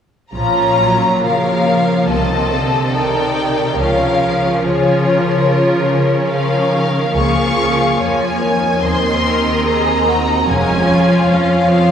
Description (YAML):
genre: classical, slow romantic movement for string orchestra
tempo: 71 BPM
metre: 4/4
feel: uneven beats, rubato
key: Bb minor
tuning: A4 = 439 Hz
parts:
  - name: warm symphonic violin section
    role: melody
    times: 0.3-11.9 s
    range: Db5 to Db6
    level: -18 LUFS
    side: left 2 dB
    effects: none
  - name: warm symphonic violin section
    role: second line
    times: 0.3-11.9 s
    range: F4 to F5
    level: -19 LUFS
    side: left 2 dB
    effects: none
  - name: clear symphonic viola section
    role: accompaniment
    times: 0.3-11.9 s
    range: D3 to F4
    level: -18 LUFS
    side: right 1 dB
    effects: none
  - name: rich symphonic cello section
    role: bass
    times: 0.3-11.9 s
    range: Eb2 to Db3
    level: -20 LUFS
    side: right 1 dB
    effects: none
  - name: rich symphonic double bass section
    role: bass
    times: 0.3-11.2 s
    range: F1 to Eb2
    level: -26 LUFS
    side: right 1 dB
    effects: none
room: wet church reverb, RT60 2.5 s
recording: recorded in a church or concert hall, small room ambience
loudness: -12 LUFS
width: side -8 dB against mid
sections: 0.3-11.9 A section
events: none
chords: 0.3 Bbm; 2.1 Adim/C; 3.8 Bbm/Db; 8.8 Cdim/Eb; 10.5 Db/F